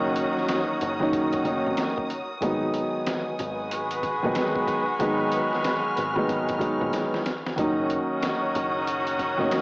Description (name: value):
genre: hip hop, boom-bap hip-hop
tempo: 93 BPM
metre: 4/4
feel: swing 63% on 16ths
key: F# major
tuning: A4 = 440 Hz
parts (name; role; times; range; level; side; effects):
- dark concert grand piano; accompaniment; 0.0-9.6 s; D#3 to D#4; -26 LUFS; equal; cassette tape, plate reverb
- warm studio string section; sustained chords; 0.0-9.6 s; F#4 to E#6; -33 LUFS; equal; cassette tape
- warm horn section; stabs; 0.0-9.6 s; D#3 to B4; -28 LUFS; equal; cassette tape, analog delay
- picked electric bass; bass; 0.0-9.5 s; F#1 to A#1; -35 LUFS; equal; none
- trip hop sampler-style drum kit; drums; 0.2-9.6 s; hi-hat, kick drum, snare drum; -32 LUFS; equal; cassette tape
room: moderate small room reverb, RT60 0.5 s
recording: home recording on cassette, vinyl crackle, small speaker sound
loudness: -23 LUFS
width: side -29 dB against mid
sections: 0.0-9.6 A section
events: drum fill 6.9-7.6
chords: 0.0 F#6; 2.4 G#m7; 7.6 F#6